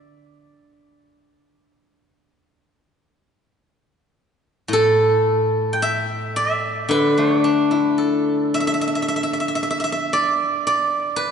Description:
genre	chinese traditional, Chinese solo plucked strings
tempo	47-58 BPM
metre	4/4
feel	rubato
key	unclear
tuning	A4 = 440 Hz
part	steel-string zither	solo	0.0-11.3 s	A2 to G5	-17 LUFS	equal	none
room	wet church reverb, RT60 3.2 s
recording	recorded in a church or concert hall, nothing above 11.0 kHz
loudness	-17 LUFS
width	side -7 dB against mid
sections	0.0-4.7 A section; 4.7-11.3 B section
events	none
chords	none

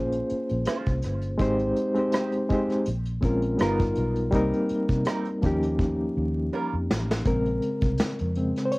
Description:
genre	R&B, neo-soul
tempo	82 BPM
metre	4/4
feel	swing 55% on 16ths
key	Bb dorian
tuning	A4 = 440 Hz
part	reed electric piano	accompaniment	0.0-8.8 s	Db3 to Db5	-25 LUFS	equal	fast tremolo, cassette tape
part	vintage muted fingered electric bass	bass	0.0-8.5 s	G1 to C3	-28 LUFS	equal	none
part	vintage brush drum kit	drums	0.1-8.8 s	hi-hat, kick drum, rim click, snare drum	-28 LUFS	equal	cassette tape
part	vintage hollow-body jazz guitar	second line	0.7-6.8 s	G3 to C5	-35 LUFS	right 4 dB	wah, cassette tape, tape echo
room	little or no reverb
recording	home recording on cassette, vinyl crackle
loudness	-23 LUFS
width	side -23 dB against mid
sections	0.0-7.3 A section; 7.3-8.8 B section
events	drum fill 5.8-7.3; reed electric piano solo 7.3-8.8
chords	0.0 Bbm9; 1.4 Abmaj7; 2.9 Bbm9; 3.6 G7alt; 4.3 Cm7; 5.4 Eb9; 7.3 Bbm9

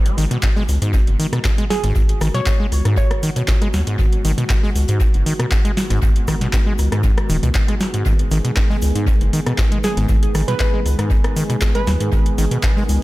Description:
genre	acid house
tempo	118 BPM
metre	4/4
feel	straight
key	G# minor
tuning	A4 = 440 Hz
part	warm analog pad	sustained chords	0.0-13.0 s	D#3 to G#4	-27 LUFS	equal	chorus, sidechain pumping
part	round analog bass	bass	0.0-13.0 s	D#1 to G#2	-19 LUFS	equal	sidechain pumping
part	booming analog drum machine	drums	0.1-13.0 s	handclaps, hi-hat, rim click, snare drum	-25 LUFS	equal	overdrive, tape echo
part	acid bass, saw	riff	0.2-12.8 s	G#2 to G#3	-23 LUFS	equal	overdrive, sidechain pumping, dub echo
part	tight funk drum kit	drums	0.2-13.0 s	hi-hat, shaker, snare drum	-36 LUFS	left 1 dB	sidechain pumping on hats, high-pass filter on hats, high-pass filter on snare, sidechain pumping on perc, high-pass filter on perc, high-pass filter on room, tape echo
part	electronic kick drum	drums	0.4-12.7 s	none	-18 LUFS	equal	overdrive
part	hollow square pluck	melody	1.7-3.5, 9.8-12.3 s	G#4 to C#5	-27 LUFS	right 2 dB	chorus, dub echo
room	studio reverb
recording	echo-heavy mix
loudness	-15 LUFS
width	side -18 dB against mid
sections	0.0-13.0 A section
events	none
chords	0.0 G#m7

